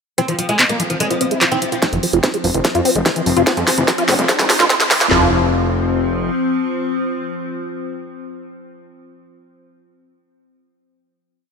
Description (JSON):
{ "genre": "psychedelic trance", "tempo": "146 BPM", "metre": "4/4", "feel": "straight", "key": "unclear", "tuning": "A4 = 440 Hz", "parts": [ { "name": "oud", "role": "melody", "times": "0.2-1.8 s", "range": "F3 to C4", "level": "-22 LUFS", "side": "right 1 dB", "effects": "phaser, sidechain pumping, digital delay" }, { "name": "evolving wavetable pad", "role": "sustained chords", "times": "0.8-8.3 s", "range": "F3 to C4", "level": "-22 LUFS", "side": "left 3 dB", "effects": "chorus, built-in reverb, sidechain pumping" }, { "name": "liquid acid bass", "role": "riff", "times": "0.2-5.3 s", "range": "E3 to F4", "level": "-19 LUFS", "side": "moving between left 5 dB and right 5 dB", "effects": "phaser, auto-pan, sidechain pumping, ping-pong delay" }, { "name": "drum and bass drum kit", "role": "drums", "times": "0.2-5.1 s", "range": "handclaps, hi-hat, snare drum", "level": "-18 LUFS", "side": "equal", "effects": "overdrive" }, { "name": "formant-sweep wobble bass", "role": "second line", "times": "1.0-1.7 s", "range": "C4 to E4", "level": "-31 LUFS", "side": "left 2 dB", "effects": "ensemble chorus, sidechain pumping, high-pass filter, digital delay" }, { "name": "drum and bass drum kit", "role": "drums", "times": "1.8-5.2 s", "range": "handclaps, kick drum, snare drum, toms", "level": "-19 LUFS", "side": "equal", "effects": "high-pass filter on kick, high-pass filter on snare, high-pass filter on toms, high-pass filter on room" }, { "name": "riser", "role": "sound effects", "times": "3.3-5.1 s", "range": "none", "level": "-26 LUFS", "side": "right 1 dB", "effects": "none" }, { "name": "fat analog bass", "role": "bass", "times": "1.9-6.3 s", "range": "F1 to F2", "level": "-20 LUFS", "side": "equal", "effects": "none" } ], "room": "moderate lush hall reverb, RT60 2.4 s", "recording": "high-pass filter", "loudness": "-14 LUFS", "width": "side -5 dB against mid", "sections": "0.2-1.8 intro; 1.8-5.1 build; 5.1-8.4 final chord", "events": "filter sweep on acid bass 0.2-1.8, 1.8-5.1; filter sweep on ambient pad 0.2-1.8; build-up 1.8-5.1; drum fill 1.8-5.1; filter sweep 1.8-5.1", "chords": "0.2 F5", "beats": "| 0.18 0.59 1.00 1.41 | 1.82 2.23 2.65 3.06 | 3.47 3.88 4.29 4.70 | 5.11 5.52 5.93 6.34 | 6.76 7.17 7.58 7.99" }